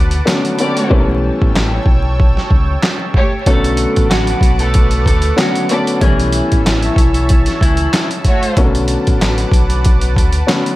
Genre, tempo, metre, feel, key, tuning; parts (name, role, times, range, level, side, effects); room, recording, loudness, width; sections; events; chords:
hip hop, boom-bap hip-hop; 94 BPM; 4/4; swing 54% on 16ths; B minor; A4 = 440 Hz
dark concert grand piano; accompaniment; 0.0-10.8 s; D3 to C#4; -19 LUFS; left 2 dB; cassette tape, high-pass filter, low-pass filter, plate reverb
lush unison pad; sustained chords; 0.0-10.8 s; B4 to E6; -24 LUFS; right 1 dB; chorus, phaser, high-pass filter, low-pass filter, plate reverb
deep dub fingered electric bass; bass; 0.0-10.4 s; A1 to D2; -17 LUFS; equal
trip hop sampler-style drum kit; drums; 0.1-10.8 s; handclaps, hi-hat, kick drum, snare drum; -14 LUFS; equal
rich studio string section; stabs; 0.6-8.7 s; A3 to D5; -20 LUFS; right 1 dB; high-pass filter, low-pass filter, tape echo, plate reverb
electric guitar at the edge of break-up; melody; 3.5-8.1 s; E3 to A4; -19 LUFS; equal; high-pass filter, low-pass filter, tape echo, plate reverb
little or no reverb; vinyl crackle; -11 LUFS; side -17 dB against mid
0.0-10.8 A section
hi-hats muted 0.9-3.5
0.0 Bm7; 0.9 A7; 3.5 Bm7; 6.0 A7; 8.6 Bm7